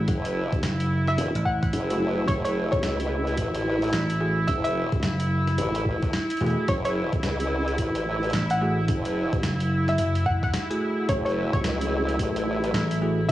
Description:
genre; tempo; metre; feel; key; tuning
glitch hop; 109 BPM; 4/4; swing 62% on 16ths; F# minor; A4 = 437 Hz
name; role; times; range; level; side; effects
vintage slap bass; bass; 0.0-13.3 s; E1 to A1; -25 LUFS; equal; transformer saturation
clear studio string section; texture; 0.0-13.3 s; E4; -30 LUFS; equal; sidechain pumping, cassette tape
formant-sweep wobble bass; bass; 0.1-13.3 s; E1 to C#2; -27 LUFS; equal; chorus, tube saturation
boom bap sampler-style drum kit; drums; 0.1-13.3 s; hi-hat, snare drum; -33 LUFS; equal; studio reverb
electronic kick drum; drums; 0.1-13.3 s; none; -28 LUFS; equal; studio reverb
woody wave-folded pluck; melody; 1.1-13.3 s; C#5 to F#5; -30 LUFS; left 1 dB; chorus, analog delay
bell-like tine electric piano; stabs; 1.9-13.2 s; A3 to G#4; -32 LUFS; right 1 dB; sidechain pumping, cassette tape, analog delay
warbly tape-like pad; sustained chords; 11.7-13.3 s; F#3 to G#4; -32 LUFS; left 1 dB; chorus, built-in reverb, sidechain pumping, cassette tape
room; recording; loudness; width
light reverb; home recording on cassette, studio reverb; -22 LUFS; side -14 dB against mid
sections
0.0-13.3 A section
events
break 10.5-11.1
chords
0.0 F#m9

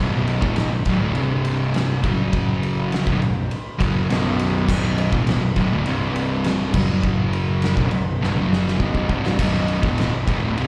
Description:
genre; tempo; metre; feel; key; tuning
stoner and doom metal; 102 BPM; 4/4; straight; unclear; A4 = 439 Hz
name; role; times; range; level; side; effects
fuzz guitar; riff; 0.0-10.7 s; B1 to F#3; -23 LUFS; equal; distortion
fuzz picked electric bass; bass; 0.0-10.7 s; B0 to F#1; -28 LUFS; equal; overdrive
oversized low-tuned drum kit; drums; 0.3-10.7 s; crash cymbal, kick drum, ride cymbal, snare drum, toms; -26 LUFS; equal; none
room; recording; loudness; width
studio reverb; live gig heard through the venue's PA, recital hall reverb; -21 LUFS; mono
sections
0.0-10.7 A section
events
drum fill 8.2-9.4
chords
0.0 Bm; 1.2 C5; 2.0 F#5; 3.1 B5; 5.9 C5; 6.7 F#5; 7.8 B5

